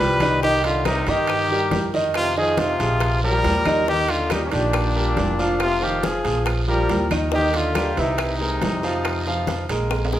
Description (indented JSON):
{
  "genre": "Afro-Cuban jazz",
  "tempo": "139 BPM",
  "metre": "4/4",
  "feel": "straight",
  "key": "Eb major",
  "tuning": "A4 = 440 Hz",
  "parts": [
    { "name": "clear trumpet", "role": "melody", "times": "0.0-9.9 s", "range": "Db4 to B4", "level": "-24 LUFS", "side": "equal", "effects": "none" },
    { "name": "trombone with plunger mute", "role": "second line", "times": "0.0-9.9 s", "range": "Ab2 to G3", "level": "-28 LUFS", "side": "left 3 dB", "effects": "none" },
    { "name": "bright grand piano", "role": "accompaniment", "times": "0.0-10.2 s", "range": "Eb3 to F5", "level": "-24 LUFS", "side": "right 2 dB", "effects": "none" },
    { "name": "upright bass", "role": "bass", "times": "0.0-10.2 s", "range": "F1 to G2", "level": "-25 LUFS", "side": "equal", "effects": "none" },
    { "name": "guiro", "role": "percussion", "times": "0.0-10.2 s", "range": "none", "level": "-34 LUFS", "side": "right 3 dB", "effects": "none" },
    { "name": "bongos", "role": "percussion", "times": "0.2-10.2 s", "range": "none", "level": "-33 LUFS", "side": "left 6 dB", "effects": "none" },
    { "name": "claves", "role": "percussion", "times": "0.2-10.1 s", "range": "none", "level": "-37 LUFS", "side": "left 2 dB", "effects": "none" },
    { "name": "congas", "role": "percussion", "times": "0.2-10.2 s", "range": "none", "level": "-32 LUFS", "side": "left 3 dB", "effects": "none" },
    { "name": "timbales", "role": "percussion", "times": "0.2-10.2 s", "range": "none", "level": "-32 LUFS", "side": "right 4 dB", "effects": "none" }
  ],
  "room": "moderate recital hall reverb, RT60 1.5 s",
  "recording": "recorded in a church or concert hall",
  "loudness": "-18 LUFS",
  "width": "side -12 dB against mid",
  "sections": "0.0-10.2 A section",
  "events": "drum fill 9.9",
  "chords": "0.4 Cm7; 2.2 Fm7; 3.0 Bb5; 3.9 Ebmaj7; 5.6 Fm; 6.5 Bb5; 7.3 Ebmaj7; 8.2 C7alt; 9.0 Fm7"
}